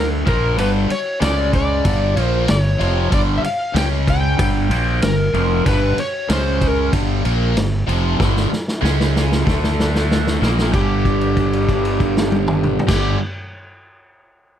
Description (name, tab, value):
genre	blues rock power trio and southern rock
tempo	95 BPM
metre	4/4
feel	straight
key	unclear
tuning	A4 = 440 Hz
part	overdriven slide guitar	melody	0.0-6.9, 10.7-13.1 s	G4 to G5	-22 LUFS	left 2 dB	none
part	cranked stack guitar	riff	0.0-13.2 s	F2 to D4	-20 LUFS	right 1 dB	overdrive, phaser
part	fuzz fingered electric bass	bass	0.0-13.1 s	F1 to D2	-20 LUFS	equal	overdrive
part	vintage drum kit	drums	0.3-13.0 s	crash cymbal, kick drum, ride cymbal, snare drum, toms	-21 LUFS	equal	none
room	light reverb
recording	none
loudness	-15 LUFS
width	side -10 dB against mid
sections	0.0-10.7 A section; 10.7-13.3 B section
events	drum fill 8.2-10.7; held note 10.7-12.9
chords	0.3 G5; 1.2 C#5; 1.8 G5; 3.7 C#5; 4.4 G5; 6.3 C#5; 6.9 G5; 8.8 C#5; 9.5 D5; 10.4 Bb5; 10.7 G5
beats	| 0.58 1.21 1.85 2.48 | 3.12 3.75 4.38 5.02 | 5.65 6.29 6.92 7.56 | 8.19 8.83 9.46 10.09 | 10.73 11.36 11.99 12.63